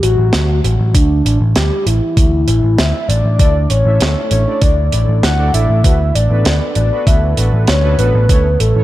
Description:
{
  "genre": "synthwave",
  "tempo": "98 BPM",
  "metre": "4/4",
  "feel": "straight",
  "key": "D major",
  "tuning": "A4 = 440 Hz",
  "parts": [
    { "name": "soft octave-layered synth lead", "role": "melody", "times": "0.0-8.8 s", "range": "D4 to F#5", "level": "-18 LUFS", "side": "left 1 dB", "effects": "chorus, cassette tape, digital delay" },
    { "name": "picked electric bass", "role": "bass", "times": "0.0-8.8 s", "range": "A1 to D2", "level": "-13 LUFS", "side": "equal", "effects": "none" },
    { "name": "tight metal drum kit", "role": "drums", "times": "0.0-8.7 s", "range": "hi-hat, snare drum", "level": "-20 LUFS", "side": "right 1 dB", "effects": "none" },
    { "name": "electronic kick drum", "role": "drums", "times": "0.9-8.4 s", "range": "none", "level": "-12 LUFS", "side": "equal", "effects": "overdrive" },
    { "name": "analog synth brass", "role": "stabs", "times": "3.4-8.8 s", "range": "A3 to E5", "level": "-22 LUFS", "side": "right 3 dB", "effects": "chorus, digital delay" }
  ],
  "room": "light reverb, small room ambience",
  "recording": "dark, warm production",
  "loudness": "-11 LUFS",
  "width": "side -15 dB against mid",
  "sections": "0.0-8.8 A section",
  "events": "none",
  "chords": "0.0 D5; 3.4 Dsus2; 5.8 Bm7; 8.3 A",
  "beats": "0.33 | 0.95 1.56 2.17 2.78 | 3.40 4.01 4.62 5.23 | 5.84 6.46 7.07 7.68 | 8.29"
}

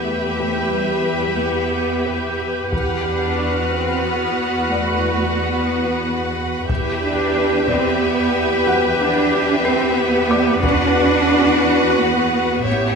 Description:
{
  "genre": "cinematic, suspense film score",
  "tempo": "91 BPM",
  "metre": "3/4",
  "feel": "straight",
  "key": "E minor",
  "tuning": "A4 = 440 Hz",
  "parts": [
    { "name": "clear studio violin section", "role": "melody", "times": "0.0-13.0 s", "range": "E5 to F#5", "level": "-26 LUFS", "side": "left 1 dB", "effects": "none" },
    { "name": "rich chamber violin section", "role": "second line", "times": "0.0-13.0 s", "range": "B4 to C#5", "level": "-23 LUFS", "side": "left 6 dB", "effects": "none" },
    { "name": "clear symphonic viola section", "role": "accompaniment", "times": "0.0-13.0 s", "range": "F#4 to G4", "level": "-22 LUFS", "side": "right 2 dB", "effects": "none" },
    { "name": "rich symphonic cello section", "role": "bass", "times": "0.0-13.0 s", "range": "G3 to D4", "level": "-21 LUFS", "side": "right 2 dB", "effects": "none" },
    { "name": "rich symphonic double bass section", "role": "bass", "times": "0.0-13.0 s", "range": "A1 to E2", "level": "-25 LUFS", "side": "right 2 dB", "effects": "none" },
    { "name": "felt-muted upright piano", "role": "texture", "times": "0.0-12.7 s", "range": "B3 to C7", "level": "-28 LUFS", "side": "left 2 dB", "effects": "none" },
    { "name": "taiko ensemble", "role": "drums", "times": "2.7-11.9 s", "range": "none", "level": "-25 LUFS", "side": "left 1 dB", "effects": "none" },
    { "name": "clear symphonic violin section", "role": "texture", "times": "2.7-6.3 s", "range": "B5 to F6", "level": "-30 LUFS", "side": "left 4 dB", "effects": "none" },
    { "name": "cymbal swell", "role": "sound effects", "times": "12.7-13.0 s", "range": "none", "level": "barely audible", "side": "none", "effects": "none" }
  ],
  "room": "wet scoring stage reverb, RT60 1.9 s",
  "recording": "minimal, uncompressed stereo recording",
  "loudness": "-16 LUFS",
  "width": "side -5 dB against mid",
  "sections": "0.0-13.0 A section",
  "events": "none",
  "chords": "0.0 Em; 2.7 Bm/E; 6.7 Em; 10.6 Bm/E",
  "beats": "0.06 | 0.73 1.40 2.06 | 2.73 3.39 4.05 | 4.72 5.38 6.04 | 6.70 7.36 8.01 | 8.66 9.32 9.98 | 10.63 11.29 11.97 | 12.66"
}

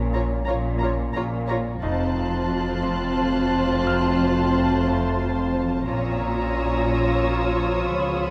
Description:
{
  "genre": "cinematic",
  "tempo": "89 BPM",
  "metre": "3/4",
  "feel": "straight",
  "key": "Bb harmonic minor",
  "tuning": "A4 = 440 Hz",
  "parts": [
    { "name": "mellow French horn section", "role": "sustained chords", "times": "0.0-8.3 s", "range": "F3 to Db4", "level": "-32 LUFS", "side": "equal", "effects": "none" },
    { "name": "concert harp", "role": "riff", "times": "0.0-8.3 s", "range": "F2 to Bb3", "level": "-29 LUFS", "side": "equal", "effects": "none" },
    { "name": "muted studio cello section", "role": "bass", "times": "0.0-8.3 s", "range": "F2 to Db3", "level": "-31 LUFS", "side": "equal", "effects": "none" },
    { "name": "muted studio double bass section", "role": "bass", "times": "0.0-8.3 s", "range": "F1 to Db2", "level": "-34 LUFS", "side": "equal", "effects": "none" },
    { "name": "punchy sub bass", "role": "drone", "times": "0.0-8.3 s", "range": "F1 to Db2", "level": "-34 LUFS", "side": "equal", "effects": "none" },
    { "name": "bright concert grand piano", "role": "texture", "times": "0.0-5.9 s", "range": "Db4 to F6", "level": "-39 LUFS", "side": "equal", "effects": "none" },
    { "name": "muted studio violin section", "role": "melody", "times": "0.1-8.3 s", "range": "A5 to Cb6", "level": "-34 LUFS", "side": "equal", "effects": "none" },
    { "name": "muted symphonic viola section", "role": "accompaniment", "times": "0.1-8.3 s", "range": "F4", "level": "-32 LUFS", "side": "equal", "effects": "none" },
    { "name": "muted studio violin section", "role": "second line", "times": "0.2-8.3 s", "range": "C5 to Db5", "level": "-33 LUFS", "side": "equal", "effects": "none" },
    { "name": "muted studio violin section", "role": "texture", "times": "1.8-8.3 s", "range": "C6 to Gb6", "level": "-38 LUFS", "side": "equal", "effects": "none" }
  ],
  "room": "moderate scoring stage reverb, RT60 1.6 s",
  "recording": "none",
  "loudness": "-23 LUFS",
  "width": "mono",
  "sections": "0.0-8.3 A section",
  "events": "none",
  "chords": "0.0 Bbm; 1.8 F; 5.9 Bbm",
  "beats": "0.48 1.15 | 1.83 2.50 3.17 | 3.85 4.52 5.20 | 5.87 6.55 7.22 | 7.89"
}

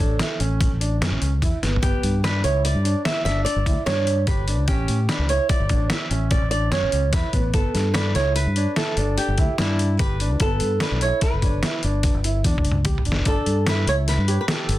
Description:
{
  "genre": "progressive instrumental, band music in an uneven meter",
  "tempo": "147 BPM",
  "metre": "7/4",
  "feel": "straight",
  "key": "G lydian",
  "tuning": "A4 = 438 Hz",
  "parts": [
    { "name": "flamenco guitar", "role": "melody", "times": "0.0-14.8 s", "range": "E4 to E5", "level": "-25 LUFS", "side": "right 2 dB", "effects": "digital delay" },
    { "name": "dark baby grand piano", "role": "arpeggios", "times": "0.0-14.8 s", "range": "B3 to G4", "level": "-29 LUFS", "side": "right 1 dB", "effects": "none" },
    { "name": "fingered electric bass", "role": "bass", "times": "0.0-14.8 s", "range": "F#1 to A2", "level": "-22 LUFS", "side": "equal", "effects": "none" },
    { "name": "trip hop sampler-style drum kit", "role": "drums", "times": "0.2-14.8 s", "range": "hi-hat, kick drum, snare drum, toms", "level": "-23 LUFS", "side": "equal", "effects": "none" }
  ],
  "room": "light reverb",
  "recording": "dense, heavily limited modern master",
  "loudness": "-19 LUFS",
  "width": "side -15 dB against mid",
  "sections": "0.0-13.3 A section; 13.3-14.8 A section",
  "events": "drum fill 1.6, 12.4-13.3",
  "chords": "0.0 A; 1.8 G5; 4.7 A; 7.5 G69; 10.4 G; 13.3 G69",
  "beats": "0.20 0.61 1.01 1.42 | 1.83 2.24 2.64 3.05 3.46 3.87 4.27 | 4.68 5.09 5.50 5.91 6.31 6.72 7.13 | 7.54 7.95 8.36 8.77 9.18 9.59 9.99 | 10.40 10.81 11.22 11.63 12.04 12.45 12.85 | 13.26 13.67 14.07 14.48"
}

